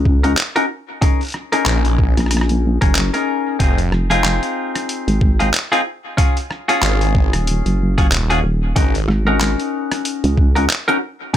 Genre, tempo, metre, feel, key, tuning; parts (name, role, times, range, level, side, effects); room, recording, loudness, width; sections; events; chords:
glitch hop; 93 BPM; 4/4; swing 58% on 16ths; A4 = 440 Hz
semi-hollow electric guitar; stabs; 0.0-11.4 s; C4 to Bb4; -20 LUFS; left 2 dB; sidechain pumping, dub echo
vowel-sweep wobble bass; bass; 0.0-10.7 s; Eb1 to Db2; -16 LUFS; equal; chorus
electronic kick drum; drums; 0.1-11.4 s; -15 LUFS; equal; studio reverb
boom bap sampler-style drum kit; drums; 0.2-11.4 s; handclaps, hi-hat, rim click; -22 LUFS; equal; studio reverb
phased detuned saw bass; bass; 1.7-9.1 s; Eb1 to Bb1; -17 LUFS; equal; phaser, tube saturation
little or no reverb; -14 LUFS; side -11 dB against mid
0.0-11.4 A section
0.0 Ab7sus4 (rootless); 1.0 Gb69 (rootless); 3.6 Fm7; 6.2 Ebm11; 8.8 Ab7sus4